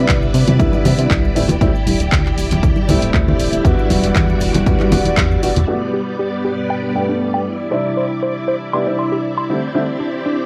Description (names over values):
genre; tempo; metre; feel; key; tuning
nu-disco, nu disco; 118 BPM; 4/4; straight; G major; A4 = 440 Hz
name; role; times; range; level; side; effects
dark grand piano; accompaniment; 0.0-9.8 s; G2 to F#4; -22 LUFS; equal; sidechain pumping, low-pass filter, cassette tape, analog delay
string machine, full ensemble; sustained chords; 0.0-10.5 s; G3 to D5; -24 LUFS; equal; ensemble chorus, sidechain pumping, cassette tape
chorused synth bass; bass; 0.0-5.7 s; D1 to C3; -20 LUFS; equal; none
electronic kick drum; drums; 0.1-5.3 s; none; -20 LUFS; equal; small room reverb
house drum kit; drums; 0.1-5.7 s; handclaps, hi-hat; -26 LUFS; equal; low-pass filter on hats, small room reverb, low-pass filter on snare
cabasa and congas; percussion; 0.1-5.7 s; none; -23 LUFS; equal; none
direct-recorded clean electric guitar; riff; 5.7-10.4 s; D4 to C6; -24 LUFS; equal; subtle chorus, low-pass filter, cassette tape
room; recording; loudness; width
light reverb; home recording on cassette; -16 LUFS; mono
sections
0.0-5.7 A section; 5.7-10.5 B section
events
band accent 5.2; filter sweep on clean electric guitar 5.7-10.5; filter sweep on grand piano 5.7-10.5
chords
0.0 Cmaj9; 1.4 D9sus4; 3.6 Em9; 5.7 G; 7.5 Cadd9; 9.5 D9sus4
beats
0.09 0.59 1.10 | 1.61 2.12 2.63 3.14 | 3.65 4.15 4.66 5.17 | 5.68 6.19 6.70 7.21 | 7.71 8.22 8.73 9.24 | 9.75 10.26